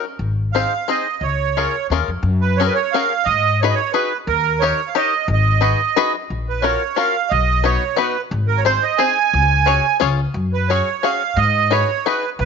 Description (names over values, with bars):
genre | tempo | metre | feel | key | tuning
musette waltz | 177 BPM | 3/4 | swing 54% on 8ths | F# major | A4 = 440 Hz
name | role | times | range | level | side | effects
bluegrass banjo | accompaniment | 0.0-12.2 s | B3 to C#5 | -20 LUFS | left 13 dB | none
upright bass | bass | 0.2-12.5 s | Ab1 to G#2 | -19 LUFS | left 2 dB | none
accordion | melody | 0.5-12.5 s | A#4 to G#5 | -18 LUFS | right 10 dB | light tremolo tuning
room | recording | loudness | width
light reverb, small room ambience | 1960s-style stereo with parts hard left and right, nothing above 7.5 kHz | -15 LUFS | side -6 dB against mid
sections
0.0-2.2 A section; 2.2-12.5 B section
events
none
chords
0.2 Ab; 1.2 Db6; 2.2 F#add9; 3.3 G#m7; 4.3 D#7; 5.3 G#m7; 6.3 F#maj7/A#; 7.3 B; 8.3 G#; 9.3 C#sus4; 10.0 C#; 10.4 F#sus2; 11.4 G#m7